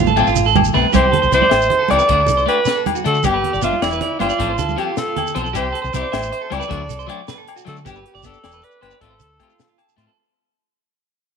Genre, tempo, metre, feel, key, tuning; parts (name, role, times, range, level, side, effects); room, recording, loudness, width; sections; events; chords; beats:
highlife guitar band; 104 BPM (dotted quarters); 12/8; straight; C major; A4 = 435 Hz
clean electric guitar; arpeggios; 0.0-10.2 s; F4 to E5; -22 LUFS; right 11 dB; slapback echo
fingered electric bass; bass; 0.0-10.1 s; E1 to D3; -23 LUFS; equal
congas; percussion; 0.1-5.3 s; -22 LUFS; right 11 dB
shekere; percussion; 0.1-10.0 s; -26 LUFS; right 8 dB
electric guitar at the edge of break-up; accompaniment; 0.2-10.1 s; E3 to A4; -25 LUFS; left 12 dB; wide subtle chorus
tight funk drum kit; drums; 0.2-10.1 s; hi-hat, kick drum, snare drum, toms; -26 LUFS; left 5 dB
agogo bells; percussion; 0.2-10.0 s; -26 LUFS; left 16 dB
breathy alto saxophone; melody; 1.0-9.7 s; E4 to D5; -18 LUFS; equal
moderate echo chamber reverb, RT60 1.6 s, small room ambience; 1960s-style stereo with parts hard left and right; -15 LUFS; side -6 dB against mid
0.9-10.2 A section
drum fill 0.0-0.9; fade-out 0.9-10.2
0.0 F/A; 0.9 C; 2.1 D; 3.2 G; 4.4 F/A; 5.5 C; 6.7 D; 7.9 G; 9.0 F/A
0.36 | 0.94 1.51 2.09 2.66 | 3.24 3.82 4.39 4.97 | 5.55 6.13 6.71 7.28 | 7.86 8.44 9.02 9.60